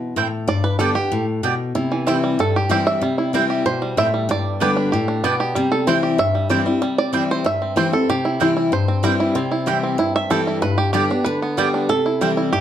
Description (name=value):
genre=bluegrass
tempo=189 BPM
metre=4/4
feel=straight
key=C major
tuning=A4 = 440 Hz
part: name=picked steel-string acoustic guitar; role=accompaniment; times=0.0-12.6 s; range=G2 to G4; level=-20 LUFS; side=left 3 dB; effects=none
part: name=mandolin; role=stabs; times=0.2-12.3 s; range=B3 to G5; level=-22 LUFS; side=right 6 dB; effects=none
part: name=bluegrass banjo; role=melody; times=0.5-12.6 s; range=E3 to E5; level=-20 LUFS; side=right 3 dB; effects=plate reverb
room=moderate studio reverb, RT60 0.6 s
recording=dark, warm production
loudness=-17 LUFS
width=side -10 dB against mid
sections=0.0-6.8 A section; 6.8-12.6 A section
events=five-string banjo solo 0.0-12.6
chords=0.5 G; 1.8 C; 4.3 G; 5.6 C; 10.6 G; 11.9 C